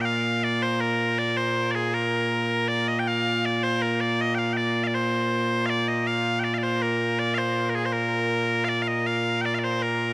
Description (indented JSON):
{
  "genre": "scottish traditional, Scottish pipe music",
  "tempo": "80 BPM",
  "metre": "2/4",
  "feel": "straight",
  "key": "Bb major",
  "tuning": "A4 = 440 Hz",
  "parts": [
    { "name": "loud bright bagpipes", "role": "solo", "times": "0.0-10.1 s", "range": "Bb2 to G5", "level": "-25 LUFS", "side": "equal", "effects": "none" }
  ],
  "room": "moderate huge ambient reverb, RT60 4.7 s",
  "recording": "none",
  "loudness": "-25 LUFS",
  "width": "mono",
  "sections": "0.0-10.1 A section",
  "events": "none",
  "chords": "none",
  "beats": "0.43 | 1.18 1.93 | 2.68 3.43 | 4.18 4.93 | 5.68 6.43 | 7.18 7.93 | 8.68 9.43"
}